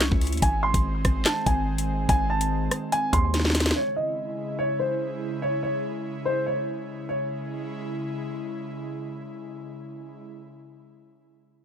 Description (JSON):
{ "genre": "hip hop, drill", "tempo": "144 BPM", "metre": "4/4", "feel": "half-time", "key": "C# harmonic minor", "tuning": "A4 = 440 Hz", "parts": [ { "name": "dark concert grand piano", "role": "melody", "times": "0.0-8.3 s", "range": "B#4 to C#6", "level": "-27 LUFS", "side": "equal", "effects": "ping-pong delay" }, { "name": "airy breathy pad", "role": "sustained chords", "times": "0.0-10.2 s", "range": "C#3 to E4", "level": "-32 LUFS", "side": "equal", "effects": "chorus" }, { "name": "hard-hitting 808-style bass", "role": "bass", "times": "0.0-3.7 s", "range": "G#1 to D#2", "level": "-26 LUFS", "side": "equal", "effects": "none" }, { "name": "drill drum kit", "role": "drums", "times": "0.0-3.8 s", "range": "handclaps, hi-hat, kick drum, rim click, snare drum", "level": "-23 LUFS", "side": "equal", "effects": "none" } ], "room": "light reverb", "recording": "none", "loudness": "-24 LUFS", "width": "side -8 dB against mid", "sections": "0.0-3.8 A section; 3.8-7.1 B section; 7.1-10.4 C section", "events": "drum fill 3.3-3.8", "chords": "0.4 G#; 3.8 C#m" }